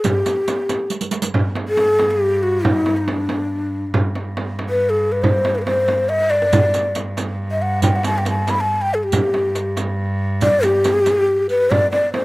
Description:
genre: Persian modal ensemble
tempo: 93 BPM (dotted quarters)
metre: 6/8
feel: straight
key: G dastgah chahargah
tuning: A4 = 440 Hz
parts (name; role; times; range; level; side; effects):
- breathy mellow ney; melody; 0.0-12.2 s; D4 to B5; -17 LUFS; left 1 dB; slapback echo
- frame drum; percussion; 0.0-12.2 s; none; -23 LUFS; right 2 dB; none
- riq; percussion; 0.0-1.3, 6.5-11.5 s; none; -27 LUFS; right 5 dB; none
- tombak; percussion; 0.0-12.2 s; none; -25 LUFS; equal; none
- rich cello; drone; 1.3-11.8 s; G2; -25 LUFS; right 1 dB; none
room: light reverb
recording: recorded outdoors, with no room sound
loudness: -16 LUFS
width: side -20 dB against mid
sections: 0.0-1.3 A section; 1.3-11.7 B section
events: drum fill 0.9-1.3, 6.1-6.5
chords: none

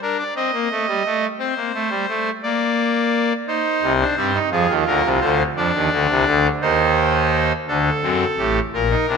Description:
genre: classical, baroque-style 3-part fugue for pipe organ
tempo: 58 BPM (dotted quarters)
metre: 6/8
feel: straight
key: C minor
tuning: A4 = 440 Hz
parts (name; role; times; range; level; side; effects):
- pipe organ, trumpet; solo; 0.0-9.2 s; A1 to Eb5; -17 LUFS; equal; none
room: wet concert hall reverb, RT60 1.8 s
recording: none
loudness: -17 LUFS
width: side -5 dB against mid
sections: 0.0-7.7 A section; 7.7-9.2 B section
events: none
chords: 0.4 Adim; 1.4 Gsus24; 2.4 Bb; 3.5 Cm; 4.5 Ddim; 5.6 Cmadd9; 6.6 Cm/Eb; 7.7 D7

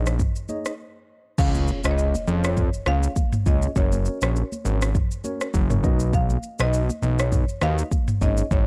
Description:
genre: afrobeats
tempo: 101 BPM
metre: 4/4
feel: swing 55% on 16ths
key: Db mixolydian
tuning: A4 = 441 Hz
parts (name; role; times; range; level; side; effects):
- mellow tine electric piano; accompaniment; 0.0-8.4 s; Db4 to Eb5; -34 LUFS; equal; none
- fat analog bass; bass; 0.0-8.7 s; Gb1 to F2; -24 LUFS; equal; none
- afro-pop drum kit; drums; 0.1-8.7 s; crash cymbal, kick drum, rim click, shaker, toms; -26 LUFS; equal; none
- congas; percussion; 0.2-8.7 s; none; -38 LUFS; equal; none
- marimba with medium hard mallets; melody; 1.4-8.7 s; Db5 to F5; -33 LUFS; equal; none
- impact; sound effects; 1.4-3.8 s; none; -38 LUFS; equal; none
room: digital ambience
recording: dry, gritty hardware recording, cassette tape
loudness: -23 LUFS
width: mono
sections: 0.0-1.4 A section; 1.4-8.7 B section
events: break 0.8-1.4; impact 1.4-3.8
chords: 0.0 Absus4; 1.4 Db; 3.8 Gb; 5.8 Cb

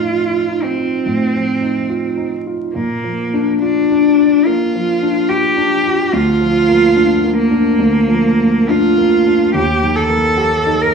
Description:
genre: classical, romantic duo for cello and grand piano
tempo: 71 BPM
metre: 4/4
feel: rubato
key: Bb major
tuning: A4 = 440 Hz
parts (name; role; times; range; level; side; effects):
- rich cello; melody; 0.0-10.9 s; Bb3 to Bb4; -15 LUFS; equal; none
- warm grand piano; accompaniment; 0.0-10.9 s; D2 to G4; -16 LUFS; equal; none
room: wet recital hall reverb, RT60 1.4 s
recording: vinyl crackle, small room ambience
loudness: -12 LUFS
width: side -5 dB against mid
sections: 0.0-10.9 A section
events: none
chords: 0.0 F7/A; 2.8 Bb; 6.1 Bb/D; 9.6 Eb

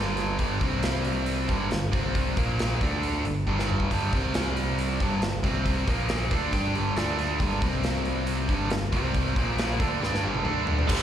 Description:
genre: hard rock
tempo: 137 BPM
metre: 4/4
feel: straight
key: G minor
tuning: A4 = 441 Hz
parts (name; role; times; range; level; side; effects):
- biting overdriven guitar; riff; 0.0-11.0 s; G2 to G4; -27 LUFS; right 1 dB; slapback echo
- overdriven picked electric bass; bass; 0.0-11.0 s; G1 to G2; -30 LUFS; equal; none
- big rock drum kit; drums; 0.2-11.0 s; crash cymbal, hi-hat, kick drum, snare drum, toms; -29 LUFS; equal; none
- sludgy distorted guitar; riff; 10.9-11.0 s; G2 to G3; -29 LUFS; equal; overdrive
room: light reverb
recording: live gig heard through the venue's PA, recital hall reverb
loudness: -24 LUFS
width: side -10 dB against mid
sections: 0.0-10.9 A section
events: drum fill 3.5-3.9, 10.0-10.9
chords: 0.0 G5; 0.6 C5; 1.5 G5; 1.9 C5; 2.4 Bb5; 2.8 D5; 3.2 G5; 4.1 C5; 5.0 G5; 5.4 C5; 5.9 Bb5; 6.3 G5; 7.0 D5; 7.4 G5; 7.6 C5; 8.5 G5; 8.9 C5; 9.4 Bb5; 9.8 G5; 10.5 D5

